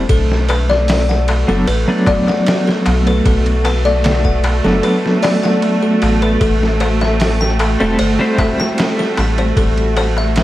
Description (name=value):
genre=trip hop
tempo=76 BPM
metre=4/4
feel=straight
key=B phrygian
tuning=A4 = 440 Hz
part: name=clean electric guitar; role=accompaniment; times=0.0-10.4 s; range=F#3 to D5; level=-19 LUFS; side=equal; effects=tremolo, vintage 12-bit sampler grit, tape echo
part: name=rich symphonic string section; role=sustained chords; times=0.0-10.4 s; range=A3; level=-19 LUFS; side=right 2 dB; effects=none
part: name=music box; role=arpeggios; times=0.0-10.4 s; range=A4 to G5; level=-20 LUFS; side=left 4 dB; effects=digital delay
part: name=soft dub sub bass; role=bass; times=0.0-10.4 s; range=E1 to B1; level=-16 LUFS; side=equal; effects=none
part: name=bowed-like drone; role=texture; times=0.0-10.4 s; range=D4 to F#4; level=-28 LUFS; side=left 2 dB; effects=built-in reverb
part: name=trip hop sampler-style drum kit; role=drums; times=0.1-10.4 s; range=hi-hat, kick drum, ride cymbal, snare drum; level=-20 LUFS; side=equal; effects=small room ambience
part: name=darbuka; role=percussion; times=0.1-10.4 s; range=none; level=-25 LUFS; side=left 3 dB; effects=none
room=little or no reverb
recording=vinyl crackle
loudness=-12 LUFS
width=side -15 dB against mid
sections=0.0-10.4 A section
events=none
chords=0.1 Bm7; 6.4 Am7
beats=| 0.10 0.89 1.67 2.46 | 3.25 4.04 4.83 5.62 | 6.41 7.20 7.99 8.78 | 9.57 10.36